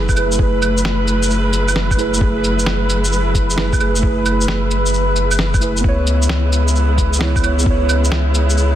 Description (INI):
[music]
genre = future garage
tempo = 132 BPM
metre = 4/4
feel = swing 67% on 16ths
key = F# minor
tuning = A4 = 442 Hz
[part]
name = muted felt-like synth keys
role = accompaniment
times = 0.0-8.8 s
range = A3 to C#5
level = -21 LUFS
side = right 3 dB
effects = chorus, vintage 12-bit sampler grit, sidechain pumping, dub echo
[part]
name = dark symphonic string section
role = sustained chords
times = 0.0-8.8 s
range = C#3 to B4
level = -23 LUFS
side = left 1 dB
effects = sidechain pumping
[part]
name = warm sub bass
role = bass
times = 0.0-8.8 s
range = F#1 to C#2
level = -18 LUFS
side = equal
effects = sidechain pumping
[part]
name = drifting glass-harmonics texture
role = texture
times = 0.0-8.8 s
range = B4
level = -26 LUFS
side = right 1 dB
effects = chorus, built-in reverb
[part]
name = electronic kick drum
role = drums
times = 0.1-7.8 s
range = none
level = -18 LUFS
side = equal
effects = small room ambience
[part]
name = electronic shaker, claves, cabasa and snare drum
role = drums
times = 0.1-8.7 s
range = none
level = -22 LUFS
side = right 1 dB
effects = small room ambience
[sound]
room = light reverb, digital ambience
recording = dense, heavily limited modern master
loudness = -14 LUFS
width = side -11 dB against mid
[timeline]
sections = 0.0-8.8 A section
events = none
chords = 0.0 F#m11; 5.8 C#m7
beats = | 0.39 0.84 1.30 1.75 | 2.21 2.66 3.12 3.57 | 4.03 4.48 4.93 5.39 | 5.84 6.30 6.75 7.21 | 7.66 8.12 8.57